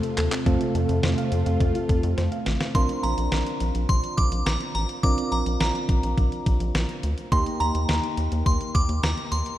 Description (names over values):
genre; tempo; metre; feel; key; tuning
synth-pop; 105 BPM; 4/4; straight; Bb major; A4 = 440 Hz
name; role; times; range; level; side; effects
soft electric-piano-like synth keys; accompaniment; 0.0-9.6 s; A3 to Bb4; -30 LUFS; right 1 dB; chorus
string machine, violas; sustained chords; 0.0-2.7 s; C3 to F4; -31 LUFS; left 1 dB; phaser, ensemble chorus
soft round pluck; arpeggios; 0.0-2.7 s; A3 to F5; -32 LUFS; left 1 dB; chorus, digital delay
clean 12-bit digital drum machine; drums; 0.0-9.6 s; handclaps, hi-hat, kick drum, snare drum; -26 LUFS; equal; none
rubbery square bass; bass; 0.2-9.4 s; A1 to F2; -26 LUFS; equal; none
glassy synth bell; melody; 2.8-9.6 s; Bb5 to D6; -28 LUFS; right 1 dB; chorus, phaser, digital delay
room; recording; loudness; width
moderate concert hall reverb, RT60 2.5 s; dark, warm production; -21 LUFS; side -13 dB against mid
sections
0.5-2.7 A section; 2.7-9.6 B section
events
drum fill 0.0-0.5, 2.2-2.7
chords
0.5 F; 2.7 Bbadd9; 7.3 Eb